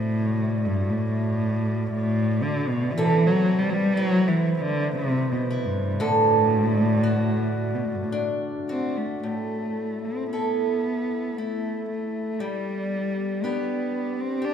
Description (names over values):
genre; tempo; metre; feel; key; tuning
celtic folk, Celtic slow air; 57 BPM; 3/4; uneven beats, rubato; A dorian; A4 = 440 Hz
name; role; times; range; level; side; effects
dark cello; melody; 0.0-14.5 s; G2 to D4; -24 LUFS; equal; none
glass harmonica; sustained chords; 0.0-14.5 s; A3 to D5; -33 LUFS; left 2 dB; none
picked old ladder-braced acoustic guitar; accompaniment; 3.0-14.5 s; A2 to B4; -27 LUFS; right 2 dB; none
room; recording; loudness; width
wet church reverb, RT60 2.9 s; minimal, uncompressed stereo recording; -22 LUFS; side -8 dB against mid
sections
0.0-9.2 A section; 9.2-14.5 B section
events
none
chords
0.0 D; 3.0 Amadd9/C; 6.0 D; 9.2 A5; 12.4 G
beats
0.95 1.96 | 2.98 3.97 4.98 | 6.01 7.03 8.11 | 9.21 10.29 11.35 | 12.38 13.41 14.41